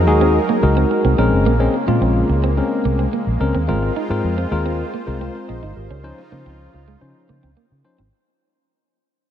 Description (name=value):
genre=funk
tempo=108 BPM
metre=4/4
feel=straight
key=unclear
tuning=A4 = 440 Hz
part: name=brassy analog pad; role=sustained chords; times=0.0-8.1 s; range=Db3 to C5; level=-25 LUFS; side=right 1 dB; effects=chorus
part: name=vintage muted fingered electric bass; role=bass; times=0.0-8.1 s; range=F1 to Db3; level=-19 LUFS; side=equal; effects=none
part: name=bright tine electric piano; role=accompaniment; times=0.1-8.0 s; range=F3 to Eb5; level=-20 LUFS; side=left 3 dB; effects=none
part: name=electric guitar at the edge of break-up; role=riff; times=0.1-8.1 s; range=Ab3 to Eb4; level=-26 LUFS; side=right 8 dB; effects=wide subtle chorus
room=moderate huge ambient reverb, RT60 4.3 s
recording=dreamy mix soaked in reverb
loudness=-15 LUFS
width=side -10 dB against mid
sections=0.0-8.1 A section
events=fade-out 0.0-8.1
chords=0.0 Gb69; 1.2 Bbm9; 3.7 Ab69; 5.9 Dbmaj9